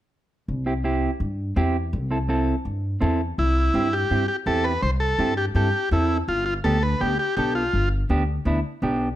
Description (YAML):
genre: latin, cumbia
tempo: 166 BPM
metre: 4/4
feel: straight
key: C major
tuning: A4 = 440 Hz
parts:
  - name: upright bass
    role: bass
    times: 0.5-9.1 s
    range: G1 to G2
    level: -24 LUFS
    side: equal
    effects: none
  - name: mellow electric guitar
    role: accompaniment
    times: 0.7-9.1 s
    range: B3 to A4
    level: -25 LUFS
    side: right 2 dB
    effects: none
  - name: combo organ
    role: melody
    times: 3.4-7.9 s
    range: E4 to C5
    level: -23 LUFS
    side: equal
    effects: plate reverb
room: light reverb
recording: none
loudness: -21 LUFS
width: side -13 dB against mid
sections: 0.5-3.4 A section; 3.4-9.2 B section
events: none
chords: 0.5 C; 6.3 G7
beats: | 0.48 0.84 1.21 1.57 | 1.93 2.29 2.66 3.02 | 3.38 3.74 4.11 4.47 | 4.83 5.19 5.56 5.92 | 6.28 6.64 7.01 7.37 | 7.73 8.10 8.46 8.82